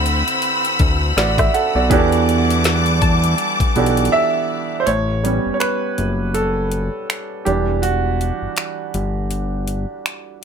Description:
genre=contemporary R&B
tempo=81 BPM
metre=4/4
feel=swing 58% on 16ths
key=E minor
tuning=A4 = 440 Hz
part: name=clear grand piano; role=accompaniment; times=0.0-10.4 s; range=D3 to F#5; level=-20 LUFS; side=right 4 dB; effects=none
part: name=clear studio string section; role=sustained chords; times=0.0-4.8 s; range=G3 to E6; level=-21 LUFS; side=left 2 dB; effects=none
part: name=fat analog bass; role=bass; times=0.0-9.9 s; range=E1 to E2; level=-19 LUFS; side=left 1 dB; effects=none
part: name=trap drum kit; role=drums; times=0.1-10.3 s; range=finger snaps, hi-hat, kick drum, rim click, snare drum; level=-20 LUFS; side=left 1 dB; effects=none
part: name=glassy wavetable pluck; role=texture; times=3.0-4.1 s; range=A5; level=-28 LUFS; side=left 5 dB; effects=chorus, tape echo
room=light reverb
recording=none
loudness=-16 LUFS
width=side -7 dB against mid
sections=0.0-4.9 A section; 4.9-10.4 B section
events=drums muted 4.1-4.9; break 4.9-10.4; grand piano solo 4.9-10.4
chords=0.0 D13; 1.9 Em11; 4.9 A9; 7.5 Em9

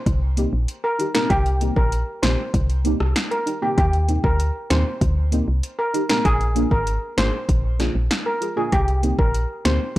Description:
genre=dancehall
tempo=97 BPM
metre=4/4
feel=straight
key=C minor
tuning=A4 = 440 Hz
part: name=woody FM bass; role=bass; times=0.1-10.0 s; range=Ab1 to Eb2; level=-21 LUFS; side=equal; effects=none
part: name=deep house drum kit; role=drums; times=0.1-10.0 s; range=finger snaps, hi-hat, kick drum, rim click, snare drum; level=-22 LUFS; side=equal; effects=overdrive
part: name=deep mellow chord stab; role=accompaniment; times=0.4-9.8 s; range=Bb3 to Ab4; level=-25 LUFS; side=equal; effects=chorus, phaser, sidechain pumping
part: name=steel pan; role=melody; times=0.8-9.7 s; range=G4 to C5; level=-25 LUFS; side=equal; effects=tape echo
room=digital ambience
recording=dry, gritty hardware recording, cassette tape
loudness=-18 LUFS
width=side -16 dB against mid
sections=0.0-10.0 A section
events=none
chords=0.0 Cm7; 3.8 Eb6; 6.3 Bb7; 8.7 Cm7

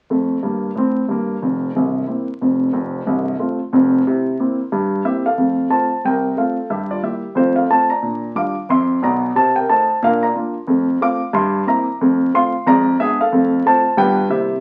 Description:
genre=jazz, stride piano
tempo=181 BPM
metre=4/4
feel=swing 60% on 8ths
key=F major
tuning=A4 = 440 Hz
part: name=warm concert grand piano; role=solo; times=0.1-14.6 s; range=C1 to D6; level=-18 LUFS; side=equal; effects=none
room=moderate club reverb, RT60 0.6 s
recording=very old 78 rpm record, vinyl crackle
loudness=-18 LUFS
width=mono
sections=0.1-5.4 A section; 5.4-14.6 B section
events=none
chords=0.1 F; 1.4 C7; 2.7 F; 4.1 C7; 5.4 F; 6.7 Edim/G; 7.4 F; 8.0 Bb6; 9.4 Adim/C; 10.0 Bb; 10.7 F; 11.3 C7/G; 12.0 F; 12.7 Fdim7; 13.3 F; 14.0 G7

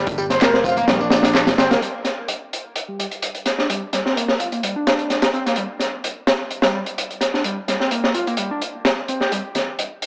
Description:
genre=breakbeat, breaks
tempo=128 BPM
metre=4/4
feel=swing 53% on 16ths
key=G minor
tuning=A4 = 441 Hz
part: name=overdriven synth lead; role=riff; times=0.0-9.4 s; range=G3 to G4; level=-26 LUFS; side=equal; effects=distortion, tube saturation, lush chorus, analog delay
part: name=picked electric bass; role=bass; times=0.0-1.7 s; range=F1 to Bb1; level=-29 LUFS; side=equal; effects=none
part: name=crunchy breakbeat drum kit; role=drums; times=0.1-10.1 s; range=hi-hat, kick drum, snare drum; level=-22 LUFS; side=equal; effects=high-pass filter on kick, high-pass filter on hats, high-pass filter on snare, high-pass filter on room
part: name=electronic tambourine and handclaps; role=drums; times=0.1-1.8 s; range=none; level=-30 LUFS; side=equal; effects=none
part: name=congas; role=percussion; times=0.2-1.6, 9.6-9.7 s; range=none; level=-41 LUFS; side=equal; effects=none
part: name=bell-like FM electric piano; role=melody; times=0.5-0.7 s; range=C5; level=-30 LUFS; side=equal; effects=none
room=moderate lush hall reverb, RT60 2.2 s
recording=dry, gritty hardware recording, cassette tape, AM radio sound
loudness=-20 LUFS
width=mono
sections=0.0-1.8 A section; 1.8-10.1 B section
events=none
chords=0.0 Gm7; 1.8 Gm

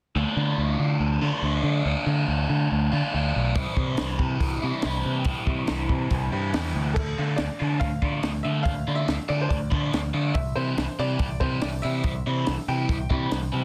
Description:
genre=indie rock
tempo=141 BPM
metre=4/4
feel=straight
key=D minor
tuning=A4 = 437 Hz
part: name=raw garage guitar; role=riff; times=0.2-13.6 s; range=C3 to F4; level=-31 LUFS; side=equal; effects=overdrive, phaser
part: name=growling picked electric bass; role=bass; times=0.2-13.6 s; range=B1 to D3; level=-28 LUFS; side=equal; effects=overdrive
part: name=compact cocktail drum kit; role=drums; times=3.6-13.4 s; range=crash cymbal, hi-hat, kick drum, snare drum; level=-30 LUFS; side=equal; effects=none
part: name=bright upright piano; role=melody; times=6.9-13.3 s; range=A4 to G5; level=-35 LUFS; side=equal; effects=plate reverb, tape echo
room=little or no reverb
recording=dense, heavily limited modern master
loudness=-25 LUFS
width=mono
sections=0.1-7.0 A section; 7.0-13.6 B section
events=none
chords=0.1 Dm; 3.6 C; 7.0 Dm; 10.4 C

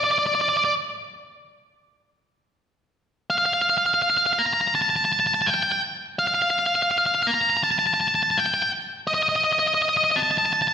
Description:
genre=rock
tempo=83 BPM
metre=4/4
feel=straight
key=unclear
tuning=A4 = 440 Hz
part: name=octave-fuzz lead guitar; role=solo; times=0.0-10.7 s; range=D5 to Bb5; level=-19 LUFS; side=equal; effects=distortion
room=wet recital hall reverb, RT60 1.8 s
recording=recorded in a church or concert hall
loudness=-19 LUFS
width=side -8 dB against mid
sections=0.0-10.7 A section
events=none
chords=none

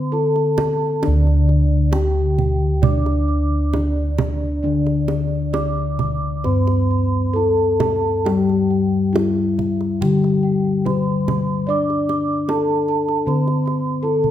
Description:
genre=Javanese gamelan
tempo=68 BPM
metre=4/4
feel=uneven beats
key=D slendro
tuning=A4 = 439 Hz
part: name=gamelan-type bronze metallophone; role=melody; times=0.0-14.3 s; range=D4 to D5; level=-23 LUFS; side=left 1 dB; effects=none
part: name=gamelan-type bronze metallophone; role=accompaniment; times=0.0-14.3 s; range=D3 to D4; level=-22 LUFS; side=left 4 dB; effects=none
part: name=gamelan-type bronze metallophone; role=arpeggios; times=0.0-14.3 s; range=D5 to D6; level=-28 LUFS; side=right 6 dB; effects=none
part: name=gamelan-type bossed gongs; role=bass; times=0.0-14.3 s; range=D2 to D5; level=-20 LUFS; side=equal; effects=none
part: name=kendang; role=percussion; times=0.4-14.3 s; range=none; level=-24 LUFS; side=right 5 dB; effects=none
room=moderate recital hall reverb, RT60 1.5 s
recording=none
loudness=-16 LUFS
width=side -11 dB against mid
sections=0.0-14.3 A section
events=none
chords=none

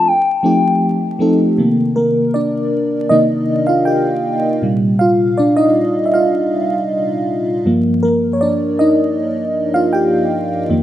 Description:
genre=R&B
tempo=79 BPM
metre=4/4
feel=straight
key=G minor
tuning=A4 = 441 Hz
part: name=gliding portamento lead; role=melody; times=0.0-1.2 s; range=G5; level=-16 LUFS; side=left 3 dB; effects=chorus, tape echo
part: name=FM electric piano with soft pad layer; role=accompaniment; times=0.0-10.8 s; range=F2 to G5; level=-13 LUFS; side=equal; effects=chorus, tremolo
room=moderate echo chamber reverb, RT60 1.9 s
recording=dark, warm production, vinyl crackle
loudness=-13 LUFS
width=side -12 dB against mid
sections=0.0-1.6 A section; 1.6-10.8 B section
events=FM electric piano solo 1.6-10.8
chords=0.1 F9; 1.6 Cm9; 4.6 Bb69; 7.7 Gm7

